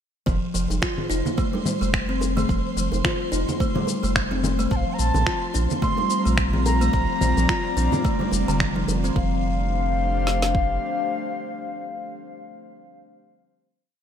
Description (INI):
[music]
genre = organic downtempo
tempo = 108 BPM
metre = 4/4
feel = swing 56% on 16ths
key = F major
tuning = A4 = 440 Hz
[part]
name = buzzing kalimba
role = arpeggios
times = 0.3-9.4 s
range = D3 to F4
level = -26 LUFS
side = left 2 dB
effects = ping-pong delay
[part]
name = warm sub bass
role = bass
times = 0.3-10.8 s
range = F1 to Bb1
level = -24 LUFS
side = right 1 dB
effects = none
[part]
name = deep house drum kit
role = drums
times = 0.3-10.7 s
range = kick drum, snare drum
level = -26 LUFS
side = right 1 dB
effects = small room reverb
[part]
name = electronic congas, shaker and finger snaps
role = drums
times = 0.3-9.1 s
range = none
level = -28 LUFS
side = left 2 dB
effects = small room reverb
[part]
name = twinkling granular texture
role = texture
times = 0.7-9.2 s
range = C5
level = -35 LUFS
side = right 2 dB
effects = built-in reverb, analog chorus
[part]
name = bongos and congas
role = percussion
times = 0.7-9.0 s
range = none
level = -32 LUFS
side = right 4 dB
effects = none
[part]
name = bright reedy bansuri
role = melody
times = 4.7-12.1 s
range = F5 to C6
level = -27 LUFS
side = left 2 dB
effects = ping-pong delay
[part]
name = airy breathy pad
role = sustained chords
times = 5.6-12.1 s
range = G3 to Bb5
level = -30 LUFS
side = left 2 dB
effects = chorus, sidechain pumping
[sound]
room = light reverb, digital ambience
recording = bright 1980s-style digital production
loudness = -20 LUFS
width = side -8 dB against mid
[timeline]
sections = 0.3-9.2 groove; 9.2-11.4 final chord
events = none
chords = 0.3 F; 4.7 Bb; 9.2 F